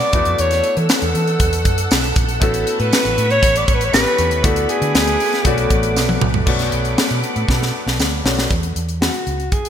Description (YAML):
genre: polished 1980s jazz-funk pop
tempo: 118 BPM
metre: 4/4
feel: straight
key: B minor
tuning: A4 = 440 Hz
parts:
  - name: warm alto saxophone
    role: melody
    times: 0.0-9.7 s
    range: F#4 to D5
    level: -19 LUFS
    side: equal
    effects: none
  - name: clear baby grand piano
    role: accompaniment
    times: 0.0-8.5 s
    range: A3 to G4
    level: -24 LUFS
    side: left 4 dB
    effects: wide subtle chorus
  - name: soft string machine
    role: sustained chords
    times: 0.0-8.5 s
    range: A3 to E6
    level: -25 LUFS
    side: right 1 dB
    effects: ensemble chorus
  - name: crisp fusion drum kit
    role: drums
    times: 0.0-9.7 s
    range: crash cymbal, hi-hat, kick drum, snare drum, toms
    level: -18 LUFS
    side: equal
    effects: gated reverb
  - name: vintage muted fingered electric bass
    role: bass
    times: 0.1-9.5 s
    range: A1 to E3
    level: -21 LUFS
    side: right 1 dB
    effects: none
  - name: tambourine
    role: percussion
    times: 0.9-8.1 s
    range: none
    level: -30 LUFS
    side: right 9 dB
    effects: none
room: moderate lush hall reverb, RT60 1.7 s, small room ambience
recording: bright 1980s-style digital production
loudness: -14 LUFS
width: side -9 dB against mid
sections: 0.0-6.5 A section; 6.5-8.5 B section; 8.5-9.7 C section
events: drum fill 6.0-6.5, 7.5-8.5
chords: 0.1 E9sus4; 2.4 A69; 3.9 A9; 4.4 D6; 5.5 Bm7; 8.5 Esus2